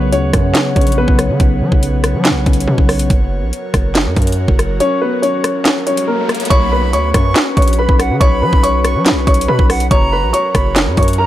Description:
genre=hip hop, drill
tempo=141 BPM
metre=4/4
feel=half-time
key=unclear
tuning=A4 = 440 Hz
part: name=dark grand piano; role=melody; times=0.0-1.2, 4.8-11.3 s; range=A#3 to C#6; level=-17 LUFS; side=left 1 dB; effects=low-pass filter, ping-pong delay
part: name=mellow tine electric piano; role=accompaniment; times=0.0-3.1 s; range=C#3 to C#5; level=-20 LUFS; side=left 1 dB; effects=medium stereo tremolo, low-pass filter
part: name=airy breathy pad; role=sustained chords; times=0.0-11.3 s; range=F#3 to F#5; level=-22 LUFS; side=left 1 dB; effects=chorus
part: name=distorted 808-style bass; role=bass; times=0.0-11.3 s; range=F#1 to F#3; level=-17 LUFS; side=equal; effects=distortion
part: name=drill drum kit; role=drums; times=0.1-11.2 s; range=handclaps, hi-hat, kick drum, rim click, snare drum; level=-14 LUFS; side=equal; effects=none
part: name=riser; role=sound effects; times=5.5-6.5 s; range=none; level=-26 LUFS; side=equal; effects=none
part: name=breathy silver concert flute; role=second line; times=6.5-11.3 s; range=F#5 to C#6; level=-22 LUFS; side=right 3 dB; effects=ping-pong delay
room=digital ambience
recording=none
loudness=-11 LUFS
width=side -13 dB against mid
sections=0.0-6.5 A section; 6.5-11.3 B section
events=break 3.1-6.5; kick muted 4.8-6.5; riser 5.5-6.5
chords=0.0 Bsus2; 3.1 F#; 6.5 Bsus2; 9.9 F#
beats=0.12 0.55 0.97 | 1.40 1.82 2.25 2.67 | 3.10 3.53 3.95 4.38 | 4.80 5.23 5.65 6.08 | 6.50 6.93 7.36 7.78 | 8.21 8.63 9.06 9.48 | 9.91 10.34 10.76 11.19

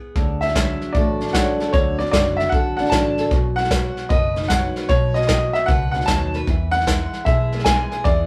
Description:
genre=honky-tonk and classic country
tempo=152 BPM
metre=4/4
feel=swing 65% on 8ths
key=unclear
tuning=A4 = 438 Hz
part: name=picked old ladder-braced acoustic guitar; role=accompaniment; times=0.0-8.3 s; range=A2 to B4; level=-27 LUFS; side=equal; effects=none
part: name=vintage muted fingered electric bass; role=bass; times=0.2-8.3 s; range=F#1 to E2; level=-28 LUFS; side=equal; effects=none
part: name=vintage brush drum kit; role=drums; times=0.2-8.2 s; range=hi-hat, kick drum, snare drum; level=-23 LUFS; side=equal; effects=none
part: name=clear upright piano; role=melody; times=0.4-8.3 s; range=C#5 to A5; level=-24 LUFS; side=equal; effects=none
room=wet studio reverb, RT60 0.6 s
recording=band playing live in one room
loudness=-19 LUFS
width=mono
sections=0.2-8.3 A section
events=stop 0.0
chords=0.2 D; 3.3 B; 6.5 E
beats=| 0.16 0.55 0.95 1.34 | 1.74 2.13 2.53 2.92 | 3.32 3.71 4.11 4.50 | 4.90 5.29 5.69 6.08 | 6.48 6.87 7.27 7.66 | 8.06

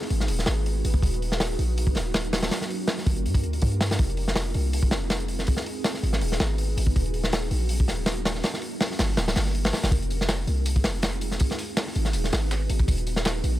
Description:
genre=drum and bass, jungle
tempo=162 BPM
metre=4/4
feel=swing 54% on 16ths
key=unclear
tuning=A4 = 442 Hz
part: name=ethereal airy pad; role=sustained chords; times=0.0-13.6 s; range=Gb3 to Cb5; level=-33 LUFS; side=right 1 dB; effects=ensemble chorus, built-in reverb, vintage 12-bit sampler grit
part: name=crunchy breakbeat drum kit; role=drums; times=0.0-13.5 s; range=hi-hat, kick drum, snare drum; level=-25 LUFS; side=equal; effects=none
part: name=warm 808-style bass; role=bass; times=0.1-13.6 s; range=D1 to G2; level=-26 LUFS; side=equal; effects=none
part: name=dusty soul sampler-style drum kit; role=drums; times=9.9-13.5 s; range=hi-hat, snare drum, tambourine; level=-36 LUFS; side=equal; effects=high-pass filter on perc, high-pass filter on snare, high-pass filter on hats
room=small room ambience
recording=none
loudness=-23 LUFS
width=side -14 dB against mid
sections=0.0-13.6 A section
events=none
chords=0.0 Abm7; 1.0 Ebm7; 2.5 Gm7; 4.0 Fm7; 5.5 Abm7; 7.0 Ebm7; 8.4 Gm7; 9.9 Fm7; 11.4 Abm7; 12.9 Ebm7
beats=0.29 0.66 | 1.03 1.40 1.77 2.14 | 2.51 2.88 3.25 3.62 | 3.99 4.36 4.73 5.10 | 5.47 5.84 6.21 6.58 | 6.96 7.33 7.70 8.07 | 8.44 8.81 9.18 9.55 | 9.92 10.29 10.66 11.03 | 11.40 11.77 12.14 12.51 | 12.88 13.25

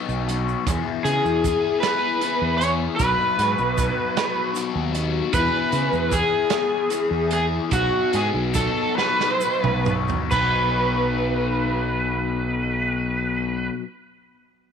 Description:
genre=psychedelic rock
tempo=44-52 BPM (dotted quarters)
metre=6/8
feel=straight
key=B major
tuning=A4 = 440 Hz
part: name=overdriven electric guitar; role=riff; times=0.0-13.8 s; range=E2 to G#4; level=-26 LUFS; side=left 9 dB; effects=phaser
part: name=fuzz fingered electric bass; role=bass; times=0.1-13.7 s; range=B1 to C#3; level=-26 LUFS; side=right 2 dB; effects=overdrive
part: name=tube shaker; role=percussion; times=0.1-10.7 s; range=none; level=-38 LUFS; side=right 14 dB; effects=none
part: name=crunchy breakbeat drum kit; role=drums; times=0.3-10.5 s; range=crash cymbal, hi-hat, kick drum, snare drum, toms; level=-28 LUFS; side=right 6 dB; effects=none
part: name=overdriven slide guitar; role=melody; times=1.0-13.7 s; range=F#4 to C#5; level=-22 LUFS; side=equal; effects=slapback echo
room=light reverb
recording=1960s-style stereo with parts hard left and right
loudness=-20 LUFS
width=side -7 dB against mid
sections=0.0-10.3 A section; 10.3-13.1 B section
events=slowing down 5.3-10.3; drum fill 9.0-10.3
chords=0.0 B; 0.7 E; 3.0 B; 5.3 E; 7.7 B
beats=| 0.67 1.84 | 3.00 4.17 | 5.34 6.52 | 7.73 8.99 | 10.32 11.70

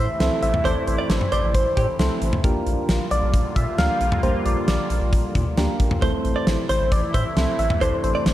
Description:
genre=synth-pop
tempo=134 BPM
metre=4/4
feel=straight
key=unclear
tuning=A4 = 440 Hz
part: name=soft struck synth lead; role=melody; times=0.0-8.3 s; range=C5 to F5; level=-25 LUFS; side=equal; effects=chorus, tape echo
part: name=direct-recorded clean electric guitar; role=second line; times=0.0-1.9, 6.0-8.2 s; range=G4 to D5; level=-29 LUFS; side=right 4 dB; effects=lush chorus, tape echo
part: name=sweeping resonant pad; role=sustained chords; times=0.0-8.3 s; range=C3 to F4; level=-30 LUFS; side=equal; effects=chorus
part: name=round analog bass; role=bass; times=0.0-8.3 s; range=A1 to Bb2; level=-24 LUFS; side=equal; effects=none
part: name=soft electric-piano-like synth keys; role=accompaniment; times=0.2-8.3 s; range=A3 to D5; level=-27 LUFS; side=right 1 dB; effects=chorus
part: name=huge arena drum kit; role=drums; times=0.2-8.3 s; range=cowbell, hi-hat, kick drum, snare drum, toms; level=-23 LUFS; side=equal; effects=none
room=moderate lush hall reverb, RT60 1.7 s, small room ambience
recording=dark, warm production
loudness=-19 LUFS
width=side -14 dB against mid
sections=0.0-8.3 A section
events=none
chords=0.0 Am; 2.4 Gm7/Bb; 6.0 Am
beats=0.20 | 0.65 1.10 1.54 1.99 | 2.44 2.89 3.34 3.78 | 4.23 4.68 5.13 5.58 | 6.02 6.47 6.92 7.37 | 7.81 8.26

